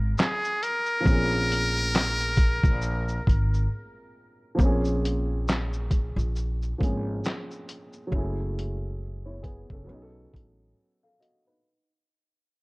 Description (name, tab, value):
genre	lo-fi hip hop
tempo	68 BPM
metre	4/4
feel	swing 56% on 16ths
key	Bb minor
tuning	A4 = 440 Hz
part	dark upright piano	accompaniment	0.0-11.9 s	F3 to F5	-32 LUFS	equal	cassette tape
part	upright bass	bass	0.0-10.7 s	Gb1 to B1	-28 LUFS	equal	none
part	trumpet with metal mute	melody	0.2-3.7 s	Ab4 to Bb4	-28 LUFS	equal	none
part	lo-fi sampler-style drum kit	drums	0.2-11.4 s	handclaps, hi-hat, kick drum, shaker, snare drum	-24 LUFS	equal	none
room	small room reverb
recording	cassette tape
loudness	-23 LUFS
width	side -26 dB against mid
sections	0.0-4.6 A section; 4.6-11.6 B section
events	break 3.7-4.6; fade-out 4.6-11.6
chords	0.0 Bbm7; 8.1 Gbm7; 9.9 B9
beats	0.17 | 1.05 1.94 2.82 3.70 | 4.58 5.47 6.35 7.23 | 8.11 9.00 9.88 10.76